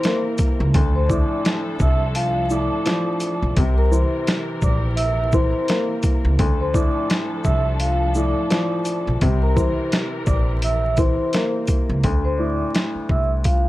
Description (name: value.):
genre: hip hop, boom-bap hip-hop.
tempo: 85 BPM.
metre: 4/4.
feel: swing 59% on 16ths.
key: D minor.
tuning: A4 = 436 Hz.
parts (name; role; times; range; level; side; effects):
vibraphone with soft mallets; melody; 0.0-13.7 s; F4 to E6; -25 LUFS; left 1 dB; high-pass filter, low-pass filter, tape echo.
dark upright piano; accompaniment; 0.0-13.7 s; D2 to Bb3; -24 LUFS; left 1 dB; cassette tape, high-pass filter, low-pass filter.
dark studio string section; sustained chords; 0.0-12.0 s; E3 to Bb4; -32 LUFS; equal; high-pass filter, low-pass filter.
boom bap sampler-style drum kit; drums; 0.0-13.6 s; hi-hat, kick drum, shaker, snare drum; -21 LUFS; equal; none.
upright bass; bass; 0.6-13.7 s; Bb1 to D2; -21 LUFS; equal; none.
room: studio ambience.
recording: dry, gritty hardware recording, vinyl crackle.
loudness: -18 LUFS.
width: side -16 dB against mid.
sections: 0.0-12.0 A section; 12.0-13.7 B section.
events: none.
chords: 0.0 C7; 0.7 Dm; 3.6 C7; 6.4 Dm; 9.2 C7; 12.0 Dm.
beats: 0.04 | 0.74 1.45 2.16 2.86 | 3.57 4.27 4.98 5.69 | 6.39 7.10 7.80 8.51 | 9.22 9.92 10.63 11.33 | 12.04 12.74 13.45.